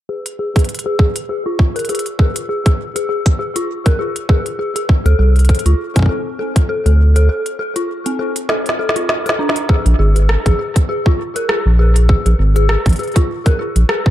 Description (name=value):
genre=IDM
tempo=100 BPM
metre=4/4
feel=swing 56% on 16ths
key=unclear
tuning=A4 = 437 Hz
part: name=dark detuned synth bell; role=arpeggios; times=0.1-14.0 s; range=C4 to Bb4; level=-20 LUFS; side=left 2 dB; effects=chorus, low-pass filter, analog delay
part: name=organic electronic drum kit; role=drums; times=0.3-14.0 s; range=hi-hat, rim click, snare drum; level=-21 LUFS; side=right 1 dB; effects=analog delay
part: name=electronic kick drum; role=drums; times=0.6-14.1 s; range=none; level=-14 LUFS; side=equal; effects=overdrive
part: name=round analog bass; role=bass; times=5.1-13.8 s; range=Ab1 to D2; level=-10 LUFS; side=equal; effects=none
room=light reverb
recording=echo-heavy mix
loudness=-13 LUFS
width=side -13 dB against mid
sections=0.1-9.7 A section; 9.7-14.1 B section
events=filter sweep on synth bell 0.1-9.7; break 7.3-9.7; drum fill 8.5-9.7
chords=0.1 N.C.; 4.9 D7(no3); 9.7 Bb5